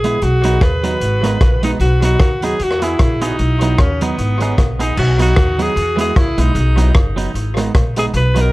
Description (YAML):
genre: ska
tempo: 152 BPM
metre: 4/4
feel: swing 56% on 8ths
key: B major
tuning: A4 = 445 Hz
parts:
  - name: clear alto saxophone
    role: melody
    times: 0.0-8.5 s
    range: B3 to B4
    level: -19 LUFS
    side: equal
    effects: analog delay
  - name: clean electric guitar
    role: accompaniment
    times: 0.0-8.5 s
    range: F#3 to G#4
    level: -21 LUFS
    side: right 4 dB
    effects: vibrato effect
  - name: upright bass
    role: bass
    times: 0.0-8.5 s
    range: F#1 to E2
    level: -16 LUFS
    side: equal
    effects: none
  - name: crunchy breakbeat drum kit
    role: drums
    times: 0.0-8.4 s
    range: crash cymbal, hi-hat, kick drum, rim click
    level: -17 LUFS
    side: equal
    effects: analog delay
room: light reverb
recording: dark, warm production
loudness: -12 LUFS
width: side -19 dB against mid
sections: 0.0-5.0 A section; 5.0-8.5 A section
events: none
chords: 0.2 B; 1.0 G#m; 1.8 B; 2.6 E; 3.4 B; 4.2 G#m; 5.0 B; 5.8 E; 6.6 B; 7.3 G#m